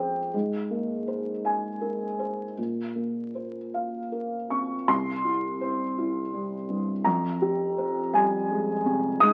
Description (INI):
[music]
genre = classical, contemporary piece for solo felt piano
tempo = 52-56 BPM (dotted quarters)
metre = 6/8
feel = rubato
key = F minor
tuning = A4 = 442 Hz
[part]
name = felt-muted upright piano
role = solo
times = 0.0-9.3 s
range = C2 to Eb6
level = -28 LUFS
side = equal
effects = none
[sound]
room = moderate large studio reverb, RT60 0.9 s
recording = very old 78 rpm record, vinyl crackle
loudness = -28 LUFS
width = mono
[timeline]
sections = 0.0-4.9 A section; 4.9-9.3 B section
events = none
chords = 0.3 Abadd9; 2.6 Bbsus2; 4.9 C; 7.0 Fmadd9